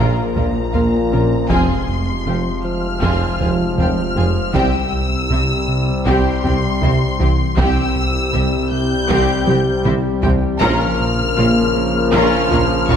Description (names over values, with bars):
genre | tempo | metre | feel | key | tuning
cinematic, hybrid orchestral and electronic film score | 79 BPM | 4/4 | straight | unclear | A4 = 439 Hz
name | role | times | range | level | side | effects
warm symphonic violin section | melody | 0.0-13.0 s | Bb5 to G6 | -24 LUFS | left 4 dB | none
warm symphonic violin section | second line | 0.0-13.0 s | E4 to Bb5 | -25 LUFS | left 3 dB | none
rich symphonic viola section | accompaniment | 0.0-13.0 s | Bb3 to G4 | -25 LUFS | right 1 dB | none
bright trombone section | sustained chords | 0.0-13.0 s | Bb2 to G3 | -25 LUFS | right 3 dB | none
mellow French horn section | sustained chords | 0.0-13.0 s | Ab3 to Bb4 | -24 LUFS | left 6 dB | none
harp-like synth pluck | arpeggios | 0.0-13.0 s | C3 to F4 | -28 LUFS | left 6 dB | none
smooth gliding synth bass | riff | 0.0-13.0 s | C2 to Bb3 | -22 LUFS | right 1 dB | none
rich symphonic cello section | bass | 0.0-13.0 s | F2 to C3 | -26 LUFS | right 2 dB | none
rich symphonic double bass section | bass | 0.0-13.0 s | F1 to C2 | -25 LUFS | right 3 dB | none
swelling detuned saw bass | bass | 0.0-13.0 s | F1 to C2 | -25 LUFS | equal | none
warm tuba | bass | 0.0-13.0 s | F1 to C2 | -26 LUFS | right 3 dB | none
impact | sound effects | 0.1-1.5 s | none | -38 LUFS | equal | none
solo taiko drums | drums | 0.4-13.0 s | none | -23 LUFS | equal | none
room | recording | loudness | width
moderate scoring stage reverb, RT60 1.9 s | none | -14 LUFS | side -8 dB against mid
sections
0.0-13.0 A section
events
impact 0.0-1.5; drum fill 9.5-10.6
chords
0.0 Bbm; 1.5 Fm; 4.5 C; 10.6 Bbm